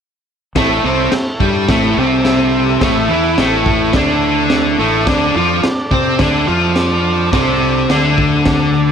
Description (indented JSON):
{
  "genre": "garage rock duo or trio",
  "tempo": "106 BPM",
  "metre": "4/4",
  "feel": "straight",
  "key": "unclear",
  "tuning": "A4 = 440 Hz",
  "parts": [
    { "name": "overdriven combo organ", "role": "sustained chords", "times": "0.6-8.9 s", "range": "D4 to E5", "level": "-22 LUFS", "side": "right 2 dB", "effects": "none" },
    { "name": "overdriven electric guitar", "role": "riff", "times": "0.6-8.9 s", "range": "A2 to C5", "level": "-13 LUFS", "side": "left 1 dB", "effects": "none" },
    { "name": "growling fingered electric bass", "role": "bass", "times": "0.6-8.9 s", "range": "A1 to C3", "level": "-21 LUFS", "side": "equal", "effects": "overdrive" },
    { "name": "crunchy breakbeat drum kit", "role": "drums", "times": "0.6-8.6 s", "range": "crash cymbal, kick drum, snare drum", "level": "-18 LUFS", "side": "equal", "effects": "none" }
  ],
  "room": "light reverb, small room ambience",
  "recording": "none",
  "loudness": "-11 LUFS",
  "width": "side -7 dB against mid",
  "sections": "0.6-8.9 A section",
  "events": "none",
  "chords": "0.6 A; 5.1 D5"
}